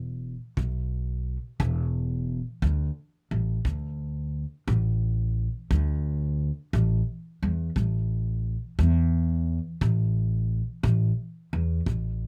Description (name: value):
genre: acoustic country blues, solo or duo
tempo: 58 BPM (dotted quarters)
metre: 12/8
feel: straight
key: unclear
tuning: A4 = 440 Hz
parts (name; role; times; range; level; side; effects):
- upright bass; bass; 0.0-12.3 s; E1 to E2; -27 LUFS; equal; none
- kick drum; drums; 0.6-12.0 s; none; -32 LUFS; equal; none
room: little or no reverb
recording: recorded outdoors, with no room sound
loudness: -27 LUFS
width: mono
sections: 0.0-12.3 A section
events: none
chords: none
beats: 0.58 1.61 | 2.63 3.66 4.68 5.71 | 6.73 7.76 8.79 9.81 | 10.84 11.87